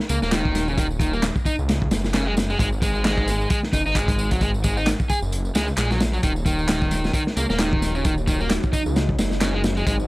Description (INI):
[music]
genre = breakbeat, breaks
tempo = 132 BPM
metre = 4/4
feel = swing 57% on 16ths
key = Eb minor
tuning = A4 = 437 Hz
[part]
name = crunchy breakbeat drum kit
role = drums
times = 0.0-10.0 s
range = hi-hat, kick drum, snare drum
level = -23 LUFS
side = equal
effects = none
[part]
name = crunchy overdriven guitar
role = riff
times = 0.1-10.0 s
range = Db3 to Ab4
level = -25 LUFS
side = equal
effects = analog delay
[part]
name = detuned saw bass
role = bass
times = 0.1-10.1 s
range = Eb1 to Db2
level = -24 LUFS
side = equal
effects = none
[part]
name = electronic tambourine and handclaps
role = drums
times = 0.1-10.1 s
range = none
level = -33 LUFS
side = equal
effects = none
[part]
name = deep dark ambient pad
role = sustained chords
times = 7.0-10.1 s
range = Gb3 to Eb5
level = -32 LUFS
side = right 1 dB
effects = chorus, built-in reverb, vintage 12-bit sampler grit, sidechain pumping
[sound]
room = little or no reverb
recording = dry, gritty hardware recording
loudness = -19 LUFS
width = side -22 dB against mid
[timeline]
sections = 0.0-10.1 A section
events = kick drops out 5.3-6.2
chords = 0.0 Ebm7; 2.6 Ab5; 6.2 Ebm7